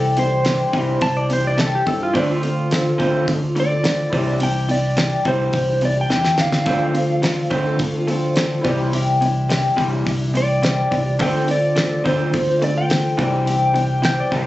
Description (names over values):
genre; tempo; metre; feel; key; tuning
folk rock and heartland rock; 106 BPM; 4/4; straight; unclear; A4 = 439 Hz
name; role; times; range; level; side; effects
electric slide guitar; melody; 0.0-14.5 s; A4 to G5; -23 LUFS; equal; tape echo
picked old ladder-braced acoustic guitar; accompaniment; 0.0-14.5 s; C3 to A4; -23 LUFS; left 2 dB; none
warm upright piano; accompaniment; 0.0-14.5 s; E4 to D5; -30 LUFS; right 1 dB; none
electric guitar through a small old amp; riff; 0.0-14.5 s; C3 to C4; -24 LUFS; equal; none
fingered electric bass; bass; 0.0-14.5 s; C2 to G2; -22 LUFS; equal; none
damped 70s drum kit; drums; 0.2-14.5 s; hi-hat, kick drum, snare drum; -25 LUFS; equal; none
pedal steel guitar; second line; 1.0-3.4, 14.1-14.5 s; D4 to A5; -23 LUFS; right 1 dB; none
room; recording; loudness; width
light reverb, small room ambience; recorded on a phone in the room, club reverb, nothing above 8.0 kHz; -16 LUFS; side -16 dB against mid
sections
0.0-14.5 A section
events
electric slide guitar solo 0.0-14.5; drum fill 6.1-6.7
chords
0.0 Cadd9; 2.1 Dm7; 4.1 Cadd9; 6.7 Dm7; 8.7 Cadd9; 11.2 Dm7; 13.2 Cadd9